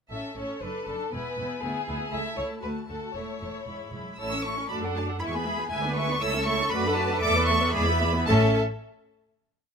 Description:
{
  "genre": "quick classical-period movement for string orchestra",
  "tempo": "117 BPM",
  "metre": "2/4",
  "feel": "straight",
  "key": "A major",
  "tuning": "A4 = 442 Hz",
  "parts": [
    { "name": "rich chamber violin section", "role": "melody", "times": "0.1-8.6 s", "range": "G#5 to E6", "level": "-30 LUFS", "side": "left 1 dB", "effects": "none" },
    { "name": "rich chamber violin section", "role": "second line", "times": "0.1-8.6 s", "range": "F#4 to C#6", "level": "-31 LUFS", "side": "right 1 dB", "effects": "none" },
    { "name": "rich chamber viola section", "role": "accompaniment", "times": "0.1-8.6 s", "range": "G#3 to B4", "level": "-31 LUFS", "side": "left 1 dB", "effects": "none" },
    { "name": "clear symphonic cello section", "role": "bass", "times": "0.1-8.6 s", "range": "C#2 to B4", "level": "-33 LUFS", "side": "equal", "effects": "none" },
    { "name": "warm chamber double bass section", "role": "bass", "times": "0.1-8.6 s", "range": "E1 to F#2", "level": "-30 LUFS", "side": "right 1 dB", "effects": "none" }
  ],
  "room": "light reverb",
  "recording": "none",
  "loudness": "-24 LUFS",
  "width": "side -6 dB against mid",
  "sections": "0.1-4.2 A section; 4.2-8.3 A section; 8.3-9.3 final chord",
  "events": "none",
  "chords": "0.1 A; 0.6 D/F#; 1.1 E; 1.6 E7/D; 2.1 A/C#; 2.6 D; 3.2 A/E; 3.7 E; 4.2 A; 4.7 D/F#; 5.2 E; 5.7 E7/D; 6.2 A/C#; 6.7 D/F#; 7.2 E7sus4; 7.7 E7; 8.3 A",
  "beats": "| 0.10 0.62 | 1.13 1.63 | 2.13 2.64 | 3.15 3.67 | 4.19 4.71 | 5.21 5.72 | 6.22 6.72 | 7.23 7.75 | 8.28"
}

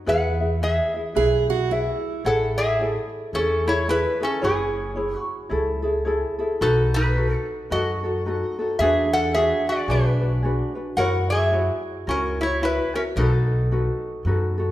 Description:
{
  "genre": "Hawaiian",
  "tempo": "110 BPM",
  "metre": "4/4",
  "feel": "swing 60% on 8ths",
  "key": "A major",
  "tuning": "A4 = 440 Hz",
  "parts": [
    { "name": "metal-body resonator slide guitar", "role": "melody", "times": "0.0-14.2 s", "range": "C#4 to F#5", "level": "-24 LUFS", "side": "equal", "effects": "none" },
    { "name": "ukulele", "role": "accompaniment", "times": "0.0-14.7 s", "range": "D4 to E5", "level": "-25 LUFS", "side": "left 1 dB", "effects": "none" },
    { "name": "upright bass", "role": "bass", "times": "0.1-14.7 s", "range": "F#1 to F#2", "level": "-25 LUFS", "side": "equal", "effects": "none" },
    { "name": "picked acoustic archtop guitar", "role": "second line", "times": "1.2-2.2 s", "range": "E4 to G#4", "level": "-25 LUFS", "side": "right 9 dB", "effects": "none" }
  ],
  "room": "wet recital hall reverb, RT60 1.8 s",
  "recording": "recorded in a church or concert hall",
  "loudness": "-20 LUFS",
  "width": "side -14 dB against mid",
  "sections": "0.0-2.3 A section; 2.3-14.7 B section",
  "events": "none",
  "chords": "0.1 E; 2.3 Amaj7; 4.4 F#m9; 6.6 B7; 8.8 E9; 11.0 F#7; 13.2 B7",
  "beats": "| 0.07 0.61 1.16 1.71 | 2.25 2.80 3.34 3.89 | 4.43 4.98 5.52 6.07 | 6.62 7.16 7.71 8.25 | 8.80 9.34 9.89 10.44 | 10.98 11.53 12.07 12.62 | 13.17 13.71 14.26"
}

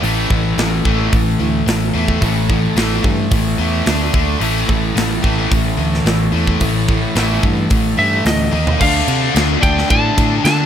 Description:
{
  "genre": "hard rock",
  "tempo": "109 BPM",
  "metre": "4/4",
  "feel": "straight",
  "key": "unclear",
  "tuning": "A4 = 440 Hz",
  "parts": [
    { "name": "high-gain distorted guitar", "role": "riff", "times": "0.0-10.7 s", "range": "A2 to D#4", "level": "-22 LUFS", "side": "left 12 dB", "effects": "distortion" },
    { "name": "overdriven electric guitar", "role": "riff", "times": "0.0-10.7 s", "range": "A2 to D4", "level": "-20 LUFS", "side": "equal", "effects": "none" },
    { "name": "tight distorted guitar", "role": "riff", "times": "0.0-8.8 s", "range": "A2 to D#4", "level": "-24 LUFS", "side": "right 11 dB", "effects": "distortion" },
    { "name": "picked electric bass", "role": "bass", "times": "0.0-10.6 s", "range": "A1 to D3", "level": "-19 LUFS", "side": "equal", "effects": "none" },
    { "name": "tight metal drum kit", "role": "drums", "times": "0.0-10.6 s", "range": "crash cymbal, hi-hat, kick drum, ride cymbal, snare drum, toms", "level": "-19 LUFS", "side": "equal", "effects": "none" },
    { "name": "lightly driven lead guitar", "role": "melody", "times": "8.0-10.7 s", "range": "D#5 to A5", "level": "-18 LUFS", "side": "equal", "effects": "digital delay" }
  ],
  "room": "little or no reverb",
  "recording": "none",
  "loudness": "-13 LUFS",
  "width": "side -9 dB against mid",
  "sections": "0.0-8.8 A section; 8.8-10.7 B section",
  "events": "drum fill 8.5",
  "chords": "0.0 A5; 3.9 D5; 4.4 A5; 8.5 D#5; 8.8 Dm",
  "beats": "| 0.03 0.58 1.12 1.67 | 2.22 2.77 3.32 3.87 | 4.42 4.96 5.51 6.06 | 6.61 7.16 7.71 8.26 | 8.81 9.35 9.90 10.45"
}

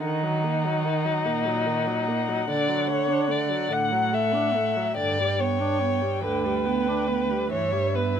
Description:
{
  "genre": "classical, slow romantic movement for string quartet",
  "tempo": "48 BPM (dotted quarters)",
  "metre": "6/8",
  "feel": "rubato",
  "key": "D major",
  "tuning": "A4 = 441 Hz",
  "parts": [
    { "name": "muted violin", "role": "melody", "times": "0.0-8.2 s", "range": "E5 to G5", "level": "-33 LUFS", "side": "left 8 dB", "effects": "none" },
    { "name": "muted violin", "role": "second line", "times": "0.0-8.2 s", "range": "Eb4 to F#5", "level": "-25 LUFS", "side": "left 2 dB", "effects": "none" },
    { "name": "muted viola", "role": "accompaniment", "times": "0.0-8.2 s", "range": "D3 to E4", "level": "-30 LUFS", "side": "right 3 dB", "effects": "none" },
    { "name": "muted cello", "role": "bass", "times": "0.0-8.2 s", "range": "D2 to Eb3", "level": "-28 LUFS", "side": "right 5 dB", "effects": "none" }
  ],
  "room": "moderate studio reverb, RT60 0.6 s",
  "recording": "minimal, uncompressed stereo recording",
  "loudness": "-22 LUFS",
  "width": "side -8 dB against mid",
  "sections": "0.0-8.2 A section",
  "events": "none",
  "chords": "0.0 Ebm; 2.5 D; 5.0 G; 7.5 Em/G",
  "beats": "| 0.03 1.26 | 2.49 3.71 | 4.97 6.24 | 7.52"
}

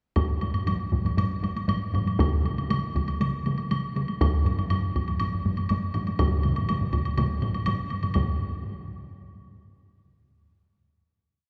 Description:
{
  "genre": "japanese traditional, taiko drum ensemble",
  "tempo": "121 BPM",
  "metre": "4/4",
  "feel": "straight",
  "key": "none",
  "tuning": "none",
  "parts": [
    { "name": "solo taiko drums", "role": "percussion", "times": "0.2-8.4 s", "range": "none", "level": "-30 LUFS", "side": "equal", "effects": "none" },
    { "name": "taiko ensemble", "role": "percussion", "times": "0.2-8.4 s", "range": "none", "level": "-33 LUFS", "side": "equal", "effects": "none" },
    { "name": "taiko ensemble", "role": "percussion", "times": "0.2-8.6 s", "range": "none", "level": "-32 LUFS", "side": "equal", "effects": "none" },
    { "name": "woodblock", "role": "percussion", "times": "0.2-8.4 s", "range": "none", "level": "-37 LUFS", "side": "equal", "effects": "none" },
    { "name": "taiko ensemble", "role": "percussion", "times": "2.2-8.6 s", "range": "none", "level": "-35 LUFS", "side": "equal", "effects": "none" }
  ],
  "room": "wet church reverb, RT60 2.8 s",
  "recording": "recorded in a church or concert hall",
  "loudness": "-26 LUFS",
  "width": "mono",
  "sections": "0.2-8.2 A section; 8.2-10.1 final hit",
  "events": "speeding up 0.2-10.1",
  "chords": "none",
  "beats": "| 0.17 0.67 1.18 1.69 | 2.19 2.70 3.21 3.71 | 4.21 4.71 5.21 5.70 | 6.20 6.69 7.18 7.67 | 8.16"
}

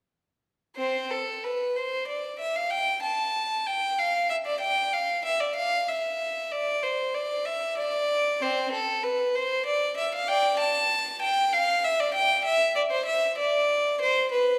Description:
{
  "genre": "classical, baroque-style suite movement for unaccompanied violin",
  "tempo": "64 BPM (dotted quarters)",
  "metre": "12/8",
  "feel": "rubato",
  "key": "C major",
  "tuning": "A4 = 440 Hz",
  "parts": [
    { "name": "rich violin", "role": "solo", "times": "0.8-14.6 s", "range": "C4 to A5", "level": "-26 LUFS", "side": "equal", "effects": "none" }
  ],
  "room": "wet recital hall reverb, RT60 1.7 s",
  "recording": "heard from further back in the room",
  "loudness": "-26 LUFS",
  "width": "mono",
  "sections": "0.8-14.6 A section",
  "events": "none",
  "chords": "none",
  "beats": "| 0.77 1.76 2.72 3.67 | 4.62 5.57 6.53 7.47 | 8.41 9.36 10.29 11.23 | 12.14 13.07 14.01"
}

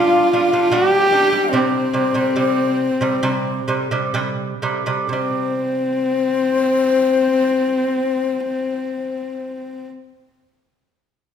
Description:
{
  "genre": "mongolian traditional, Mongolian folk",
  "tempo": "60-78 BPM",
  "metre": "4/4",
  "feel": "straight",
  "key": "unclear",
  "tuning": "A4 = 440 Hz",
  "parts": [
    { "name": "warm horsehead fiddle", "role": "melody", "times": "0.0-9.9 s", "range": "C4 to G4", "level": "-19 LUFS", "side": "left 1 dB", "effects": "none" },
    { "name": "breathy mellow low xiao", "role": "second line", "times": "0.0-9.9 s", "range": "C5 to G5", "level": "-22 LUFS", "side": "left 5 dB", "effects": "none" },
    { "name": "lute", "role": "arpeggios", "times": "0.0-10.1 s", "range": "C3 to D4", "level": "-22 LUFS", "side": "right 4 dB", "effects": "none" }
  ],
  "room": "wet recital hall reverb, RT60 1.3 s",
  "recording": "none",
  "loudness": "-16 LUFS",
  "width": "side -8 dB against mid",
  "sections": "0.0-5.1 A section; 5.1-9.1 B section",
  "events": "slowing down 0.0-5.1",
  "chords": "0.0 G5; 1.5 C5",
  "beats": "0.73 | 1.54 2.37 3.24 4.15 | 5.12 6.12 7.12 8.12"
}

